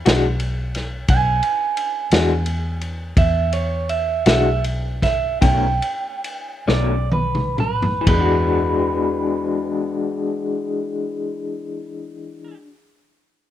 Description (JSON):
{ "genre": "slow blues", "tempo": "41-58 BPM (dotted quarters)", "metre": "12/8", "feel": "straight", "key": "E mixolydian", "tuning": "A4 = 441 Hz", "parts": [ { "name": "electric guitar through a small old amp", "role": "accompaniment", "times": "0.1-12.7 s", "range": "B2 to F#4", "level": "-22 LUFS", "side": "left 4 dB", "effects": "tremolo" }, { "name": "vintage muted fingered electric bass", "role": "bass", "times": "0.1-12.6 s", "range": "B1 to E2", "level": "-22 LUFS", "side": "equal", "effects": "none" }, { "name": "vintage drum kit", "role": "drums", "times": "0.1-8.3 s", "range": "kick drum, ride cymbal, snare drum, toms", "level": "-21 LUFS", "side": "equal", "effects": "none" }, { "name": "electric guitar through a small old amp", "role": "second line", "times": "1.1-12.6 s", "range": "B4 to G#5", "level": "-22 LUFS", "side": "right 5 dB", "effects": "none" } ], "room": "small room ambience", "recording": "rough home demo mix", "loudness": "-18 LUFS", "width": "side -11 dB against mid", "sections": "0.0-8.1 A section; 8.1-13.5 B section", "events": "clean electric guitar solo 0.0-8.1; slowing down 1.8-8.1; drum fill 6.7-8.1", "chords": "0.0 E; 5.4 B9; 8.1 E9" }